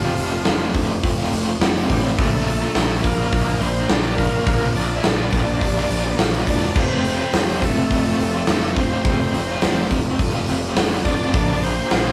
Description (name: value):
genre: classic rock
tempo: 105 BPM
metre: 4/4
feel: straight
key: unclear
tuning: A4 = 440 Hz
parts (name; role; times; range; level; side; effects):
- overdriven tonewheel organ; melody; 0.0-12.1 s; F4 to E5; -30 LUFS; equal; slow rotary speaker
- octave-fuzz lead guitar; second line; 0.0-12.1 s; F3 to E4; -31 LUFS; equal; distortion
- mellow reed electric piano; accompaniment; 0.0-12.1 s; C4 to D5; -38 LUFS; equal; none
- string machine, cellos; sustained chords; 0.0-12.1 s; A3 to D5; -35 LUFS; equal; none
- raw garage guitar; riff; 0.0-12.1 s; F2 to Bb4; -28 LUFS; equal; overdrive, tremolo
- sludgy distorted guitar; riff; 0.0-12.1 s; F2 to Bb4; -34 LUFS; equal; none
- fuzz picked electric bass; bass; 0.0-12.1 s; E1 to Bb1; -26 LUFS; equal; overdrive
- tambourine; percussion; 0.0-12.1 s; none; -48 LUFS; equal; none
- big rock drum kit; drums; 0.2-12.0 s; crash cymbal, hi-hat, kick drum, snare drum; -23 LUFS; equal; none
room: moderate studio reverb, RT60 0.6 s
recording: rough rehearsal-room recording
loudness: -20 LUFS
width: mono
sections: 0.0-12.1 A section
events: none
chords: 0.0 F; 2.2 Bb; 6.8 F; 11.3 Bb